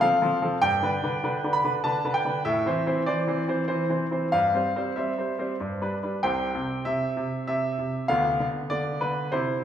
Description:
classical-period piano sonatina; 97 BPM; 3/4; straight; A4 = 440 Hz
bright grand piano; solo; 0.0-9.6 s; C2 to B5; -23 LUFS; equal
wet recital hall reverb, RT60 1.6 s; recorded in a church or concert hall; -24 LUFS; side -9 dB against mid
0.0-6.2 A section; 6.2-9.6 B section
0.0 F; 0.6 G; 2.5 Am (rootless); 4.3 C/G; 5.6 G; 6.2 N.C.; 8.1 Bdim/D

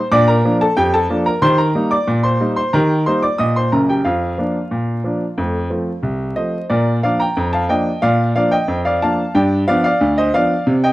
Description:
ragtime piano; 91 BPM; 2/4; straight; Bb major; A4 = 439 Hz
clear baby grand piano; solo; 0.0-10.9 s; Gb1 to Eb6; -14 LUFS; equal
small room ambience; dry, close 1970s-style studio recording, vinyl crackle; -14 LUFS; side -17 dB against mid
0.0-6.7 A section; 6.7-10.9 B section
0.1 Bb; 1.4 Eb; 4.1 Bb/F; 5.4 F; 6.7 Bb; 9.4 G7

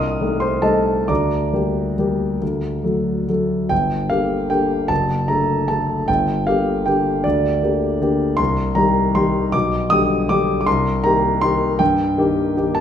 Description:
classical, piano waltz; 128-168 BPM; 3/4; rubato; G minor; A4 = 439 Hz
warm concert grand piano; solo; 0.0-12.8 s; F#1 to Eb6; -16 LUFS; equal
wet recital hall reverb, RT60 1.7 s; minimal, uncompressed stereo recording; -16 LUFS; side -9 dB against mid
0.0-3.7 A section; 3.7-12.8 B section
0.0 Am7b5/C; 1.1 Gm/D; 2.4 D; 3.7 Gm; 4.9 D/F#; 6.1 Gm; 8.4 Cm; 9.5 G/B; 10.7 Cm7

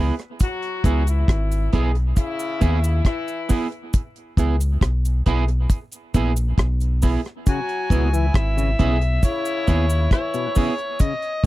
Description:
roots reggae; 68 BPM; 4/4; straight; C# minor; A4 = 442 Hz
electric guitar at the edge of break-up; accompaniment; 0.0-10.7 s; B3 to G#4; -26 LUFS; right 5 dB; tape echo
deep dub fingered electric bass; bass; 0.0-10.1 s; G#1 to D#2; -20 LUFS; equal
deep reggae drum kit; drums; 0.2-11.5 s; hi-hat, kick drum, rim click; -18 LUFS; equal
clear horn section; second line; 0.4-10.7 s; C#3 to G#4; -28 LUFS; left 4 dB; tape echo
cabasa; percussion; 0.4-11.2 s; -37 LUFS; right 1 dB
mellow harmonica; melody; 7.5-11.5 s; C#5 to G#5; -26 LUFS; equal; tape echo
overdriven clav; arpeggios; 7.5-11.5 s; B2 to E3; -28 LUFS; left 6 dB
little or no reverb; dry, close 1970s-style studio recording; -18 LUFS; side -17 dB against mid
0.0-11.5 A section
0.0 C#m7

